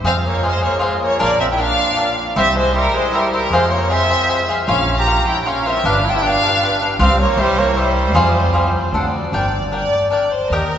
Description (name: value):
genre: mexican folk, mariachi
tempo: 155 BPM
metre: 3/4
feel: straight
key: F harmonic minor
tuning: A4 = 437 Hz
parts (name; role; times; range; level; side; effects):
- cavaquinho; accompaniment; 0.0-10.6 s; D4 to G5; -20 LUFS; left 1 dB; none
- warm studio violin section; sustained chords; 0.0-9.3 s; G3 to D5; -29 LUFS; equal; none
- upright bass; bass; 0.0-10.8 s; G1 to F2; -21 LUFS; equal; none
- clear studio violin section; melody; 0.1-10.8 s; Bb4 to Bb5; -18 LUFS; left 1 dB; none
- clear trumpet; second line; 0.1-8.9 s; G3 to G4; -22 LUFS; right 2 dB; none
room: wet church reverb, RT60 4.0 s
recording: recorded in a church or concert hall, nothing above 7.9 kHz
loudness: -14 LUFS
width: side -9 dB against mid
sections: 0.0-9.3 A section; 9.3-10.8 B section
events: none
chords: 0.0 Fm; 1.2 Bb; 2.4 C; 3.5 Fm; 4.7 Bbm; 5.8 G7; 7.0 Csus4; 7.4 C; 8.2 Fm; 8.9 D7; 9.3 Gm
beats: | 0.04 0.43 0.81 | 1.20 1.59 1.97 | 2.35 2.74 3.12 | 3.51 3.89 4.28 | 4.67 5.07 5.46 | 5.84 6.23 6.62 | 7.00 7.38 7.77 | 8.16 8.55 8.94 | 9.33 9.72 10.11 | 10.50